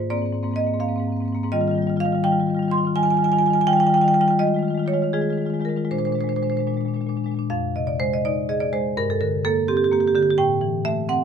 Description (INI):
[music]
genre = classical, contemporary piece for solo marimba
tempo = 74-86 BPM (dotted quarters)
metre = 6/8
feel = rubato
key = unclear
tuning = A4 = 441 Hz
[part]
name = marimba with medium hard mallets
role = solo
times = 0.0-11.2 s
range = F2 to C6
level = -19 LUFS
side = equal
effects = none
[sound]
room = light reverb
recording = close, detailed microphones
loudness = -19 LUFS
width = side -7 dB against mid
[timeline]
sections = 0.0-7.5 A section; 7.5-11.2 B section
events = none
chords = 0.1 Bb9/Ab; 1.5 Ebadd9; 4.4 Ebsus24; 5.9 Bb9; 7.5 Fm7; 9.0 Gmadd11; 10.4 Am7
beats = | 0.10 0.81 | 1.53 2.24 | 2.95 3.67 | 4.38 5.13 | 5.92 6.71 | 7.50 8.25 | 8.98 9.69 | 10.39 11.10